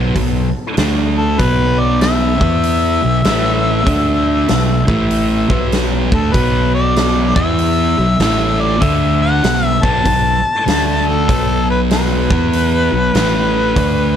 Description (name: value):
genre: blues rock power trio and southern rock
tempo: 97 BPM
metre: 4/4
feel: swing 64% on 8ths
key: B minor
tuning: A4 = 440 Hz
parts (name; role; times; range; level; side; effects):
- thick fuzz guitar; riff; 0.0-14.2 s; A2 to E4; -16 LUFS; equal; distortion
- fuzz fingered electric bass; bass; 0.0-14.2 s; A1 to E2; -19 LUFS; equal; overdrive
- huge arena drum kit; drums; 0.2-14.0 s; hi-hat, kick drum, snare drum; -20 LUFS; equal; none
- mellow harmonica; melody; 1.2-14.2 s; A4 to A5; -18 LUFS; left 2 dB; overdrive
room: light reverb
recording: none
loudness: -12 LUFS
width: side -9 dB against mid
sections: 0.0-14.2 A section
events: none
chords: 0.0 B5; 0.8 D5; 1.4 B5; 2.3 E5; 2.9 B5; 3.3 A5; 3.9 D5; 4.5 B5; 4.8 A5; 5.4 Bm; 7.3 E5; 7.9 B5; 8.2 A5; 8.8 D5; 9.4 B5; 10.7 D5; 11.3 B5; 12.2 E5; 12.8 B5; 13.1 A5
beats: 0.16 0.78 | 1.40 2.02 2.63 3.25 | 3.87 4.49 5.11 5.73 | 6.34 6.96 7.58 8.20 | 8.82 9.44 10.06 10.68 | 11.29 11.91 12.53 13.15 | 13.77